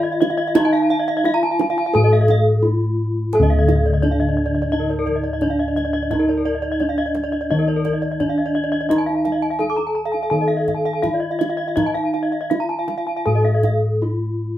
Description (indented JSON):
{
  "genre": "Balinese gamelan",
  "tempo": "86 BPM",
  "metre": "4/4",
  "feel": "uneven beats",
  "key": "unclear",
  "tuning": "A4 = 438 Hz",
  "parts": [
    { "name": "gamelan-type bronze metallophone", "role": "melody", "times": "0.0-14.6 s", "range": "D4 to A4-30c", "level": "-22 LUFS", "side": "equal", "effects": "none" },
    { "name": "gamelan-type bronze metallophone", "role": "arpeggios", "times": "0.0-13.6 s", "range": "Bb4-20c to Bb5-20c", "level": "-24 LUFS", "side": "left 3 dB", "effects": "none" },
    { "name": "gamelan-type bronze metallophone", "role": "arpeggios", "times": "0.0-13.7 s", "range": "Bb4-20c to D6", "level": "-26 LUFS", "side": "right 4 dB", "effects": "none" },
    { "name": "gamelan-type bossed gongs", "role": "bass", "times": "0.0-14.6 s", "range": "D2 to A4-30c", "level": "-20 LUFS", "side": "equal", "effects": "none" },
    { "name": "kendang", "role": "percussion", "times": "0.2-13.8 s", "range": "none", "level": "-25 LUFS", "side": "right 5 dB", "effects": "none" }
  ],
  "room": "moderate studio ambience, RT60 0.5 s",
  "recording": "band playing live in one room",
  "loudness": "-17 LUFS",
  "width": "side -13 dB against mid",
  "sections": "0.0-14.6 A section",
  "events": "drum fill 2.8-3.3",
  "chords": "none",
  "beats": "| 0.55 1.25 1.94 2.64 | 3.33 4.03 4.73 5.42 | 6.12 6.81 7.51 8.21 | 8.90 9.60 10.31 11.03 | 11.76 12.50 13.25 14.01"
}